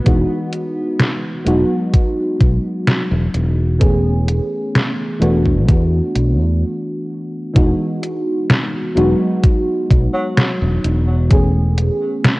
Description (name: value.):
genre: vaporwave.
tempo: 64 BPM.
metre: 4/4.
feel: straight.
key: E major.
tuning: A4 = 436 Hz.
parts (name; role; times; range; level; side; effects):
mellow FM electric piano; accompaniment; 0.0-12.4 s; E3 to G#4; -19 LUFS; equal; analog chorus, tape echo.
fretless electric bass; bass; 0.1-11.9 s; E1 to E2; -16 LUFS; equal; lush chorus.
detuned 8-bit digital drum machine; drums; 0.1-12.4 s; hi-hat, snare drum; -17 LUFS; equal; overdrive.
electronic kick drum; drums; 0.1-11.5 s; none; -13 LUFS; equal; overdrive.
mellow tenor saxophone; melody; 10.1-10.5 s; F#3; -29 LUFS; equal; vintage 12-bit sampler grit, tape echo.
room: light reverb.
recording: worn, warbling old tape, cassette tape, warbly pitch drift.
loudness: -14 LUFS.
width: side -21 dB against mid.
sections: 0.0-7.6 A section; 7.6-12.4 B section.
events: stop 6.6-7.6.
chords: 0.1 Emaj9; 3.8 Amaj7/E; 5.2 D69/E; 7.6 Emaj9; 11.3 Amaj7/E.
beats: | 0.06 1.00 1.94 2.87 | 3.81 4.75 5.69 6.62 | 7.56 8.50 9.44 10.37 | 11.31 12.25.